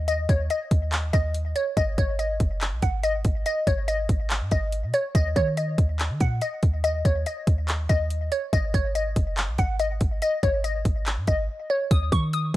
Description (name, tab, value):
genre	hip hop, trap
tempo	142 BPM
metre	4/4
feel	half-time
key	unclear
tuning	A4 = 440 Hz
part	clean 808-style bass	bass	0.0-12.6 s	Gb1 to Eb3	-26 LUFS	equal	none
part	glassy wavetable pluck	melody	0.1-12.6 s	Db5 to Eb6	-27 LUFS	left 1 dB	chorus, analog delay
part	trap drum kit	drums	0.1-12.6 s	handclaps, hi-hat, kick drum	-24 LUFS	equal	none
room	little or no reverb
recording	dry, gritty hardware recording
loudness	-22 LUFS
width	side -16 dB against mid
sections	0.0-11.9 A section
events	break 11.5-11.9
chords	0.0 Eb5; 1.8 Ab5; 5.1 Eb5; 8.5 Ab5; 11.9 N.C.